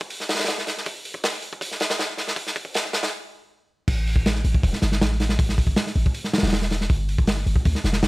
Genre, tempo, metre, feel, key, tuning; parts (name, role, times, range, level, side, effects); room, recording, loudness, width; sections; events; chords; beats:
drum and bass, jungle; 159 BPM; 4/4; straight; A4 = 440 Hz
crunchy breakbeat drum kit; drums; 0.0-8.1 s; crash cymbal, hi-hat, kick drum, snare drum; -22 LUFS; equal; high-pass filter on kick, high-pass filter on hats, high-pass filter on cymbals, high-pass filter on snare, high-pass filter on room
warm 808-style bass; bass; 3.9-8.1 s; E1 to D2; -23 LUFS; equal
little or no reverb; -21 LUFS; side -21 dB against mid
0.0-3.9 A section; 3.9-8.1 B section
build-up 0.0-3.9; stop 3.1-3.9; drop 3.9-8.1
0.10 0.48 | 0.86 1.24 1.61 1.99 | 2.37 2.75 3.12 3.50 | 3.88 4.26 4.63 5.01 | 5.39 5.76 6.14 6.52 | 6.90 7.28 7.65 8.03